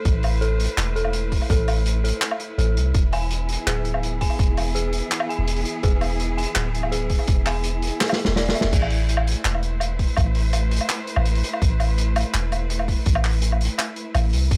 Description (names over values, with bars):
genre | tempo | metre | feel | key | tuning
half-time drum and bass | 166 BPM | 4/4 | half-time | A harmonic minor | A4 = 440 Hz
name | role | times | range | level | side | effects
rich studio cello section | sustained chords | 0.0-14.6 s | E3 to C5 | -34 LUFS | equal | sidechain pumping
dark detuned synth bell | arpeggios | 0.0-8.7 s | G#4 to G#5 | -32 LUFS | equal | chorus, tape echo
long sustained 808-style bass | bass | 0.1-14.6 s | D1 to C2 | -24 LUFS | equal | none
crunchy breakbeat drum kit | drums | 0.1-14.6 s | crash cymbal, handclaps, hi-hat, snare drum, woodblock | -28 LUFS | equal | none
electronic kick drum | drums | 0.1-14.6 s | none | -23 LUFS | equal | none
room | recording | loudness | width
small room ambience | dry, gritty hardware recording | -22 LUFS | mono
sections
0.0-8.7 A section; 8.7-14.6 A section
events
drop 0.0-8.7, 8.7-14.6; kick drops out 8.0-8.7; drum fill 8.0-8.7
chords
0.0 Am; 2.9 E; 8.7 Am